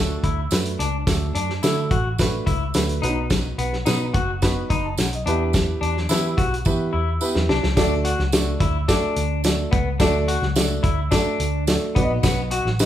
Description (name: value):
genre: uptempo 1960s-style soul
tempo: 108 BPM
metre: 4/4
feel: straight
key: D major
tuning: A4 = 439 Hz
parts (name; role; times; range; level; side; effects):
- warm upright piano; accompaniment; 0.0-12.9 s; A3 to B5; -26 LUFS; right 1 dB; none
- vintage muted fingered electric bass; bass; 0.0-12.9 s; F#1 to E3; -24 LUFS; equal; none
- electric guitar through a small old amp; riff; 0.2-12.7 s; B3 to F#4; -27 LUFS; left 4 dB; spring reverb
- warm soul drum kit; drums; 0.2-12.9 s; hi-hat, kick drum, snare drum; -22 LUFS; equal; none
- tambourine; percussion; 0.5-12.9 s; none; -32 LUFS; right 6 dB; none
room: moderate large studio reverb, RT60 0.9 s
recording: band playing live in one room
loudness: -19 LUFS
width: side -11 dB against mid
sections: 0.0-7.8 A section; 7.8-12.9 B section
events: drum fill 6.7-7.8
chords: 0.0 D; 3.0 B; 5.3 Em; 7.8 D; 12.0 B